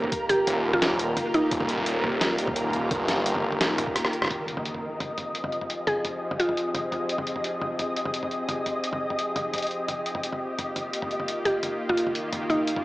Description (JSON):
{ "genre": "half-time drum and bass", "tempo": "172 BPM", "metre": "4/4", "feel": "half-time", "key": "F minor", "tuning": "A4 = 439 Hz", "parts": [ { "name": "bowed-like drone", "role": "sustained chords", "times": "0.0-12.8 s", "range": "Eb3 to Ab4", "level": "-31 LUFS", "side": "equal", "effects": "built-in reverb, sidechain pumping" }, { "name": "phased detuned saw bass", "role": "bass", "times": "0.0-4.0 s", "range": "Eb1 to G1", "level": "-27 LUFS", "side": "equal", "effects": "phaser" }, { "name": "boom bap sampler-style drum kit", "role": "drums", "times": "0.0-12.8 s", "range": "hi-hat, rim click, snare drum, toms", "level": "-30 LUFS", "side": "equal", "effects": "low-pass filter on hats, low-pass filter on toms, low-pass filter on cymbals, low-pass filter on snare" }, { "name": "flickering grainy texture", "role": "texture", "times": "0.0-12.8 s", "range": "Bb4 to Eb5", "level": "-31 LUFS", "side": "equal", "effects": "built-in reverb" }, { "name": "electronic kick drum", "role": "drums", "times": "0.1-3.9 s", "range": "none", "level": "-36 LUFS", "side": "equal", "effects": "none" }, { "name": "mallet-like synth pluck", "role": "melody", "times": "0.3-1.8, 5.9-6.7, 11.5-12.8 s", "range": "Eb4 to Ab4", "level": "-26 LUFS", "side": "equal", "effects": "chorus, tape echo" }, { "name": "impact", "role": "sound effects", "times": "4.3-5.7 s", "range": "none", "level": "-42 LUFS", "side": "equal", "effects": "none" } ], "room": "moderate echo chamber reverb, RT60 1.3 s", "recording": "small speaker sound", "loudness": "-24 LUFS", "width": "side -18 dB against mid", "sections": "0.0-4.3 A section; 4.3-12.8 B section", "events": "drop 0.0-4.3; drum fill 4.0-4.3; impact 4.3-5.7", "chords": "0.0 Eb; 4.3 Fm; 9.9 Eb", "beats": "| 0.12 0.47 0.82 1.17 | 1.51 1.86 2.21 2.56 | 2.91 3.26 3.61 3.96 | 4.30 4.65 5.00 5.35 | 5.70 6.05 6.40 6.75 | 7.09 7.44 7.79 8.14 | 8.49 8.84 9.19 9.54 | 9.89 10.23 10.58 10.93 | 11.28 11.63 11.98 12.33 | 12.68" }